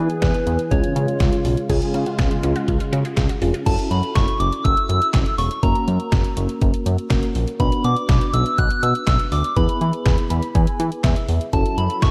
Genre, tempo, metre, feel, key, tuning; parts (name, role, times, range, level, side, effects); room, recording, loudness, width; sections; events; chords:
synth-pop; 122 BPM; 4/4; straight; A4 = 438 Hz
soft struck synth lead; melody; 0.0-12.1 s; B4 to F#6; -26 LUFS; equal; chorus, tape echo
FM electric piano with tremolo; accompaniment; 0.0-12.1 s; A#3 to B5; -28 LUFS; equal
warm analog pad; sustained chords; 0.0-3.6, 11.5-12.1 s; C#3 to A4; -28 LUFS; equal; chorus
fat analog bass; bass; 0.0-12.1 s; E1 to E3; -23 LUFS; equal
detuned 8-bit digital drum machine; drums; 0.1-12.1 s; crash cymbal, handclaps, hi-hat, kick drum, snare drum; -23 LUFS; equal
resonant blip pluck; arpeggios; 1.7-3.6 s; B3 to G#4; -33 LUFS; equal; phaser, tape echo
moderate lush hall reverb, RT60 1.7 s, digital ambience; dreamy mix soaked in reverb, lossy compression artefacts; -20 LUFS; mono
0.0-1.7 A section; 1.7-3.7 B section; 3.7-12.1 C section
FM electric piano fill 10.1-11.5
0.0 E; 0.7 C#; 3.7 F#m7; 5.6 F#; 7.6 Bm; 9.6 E; 11.5 F#m7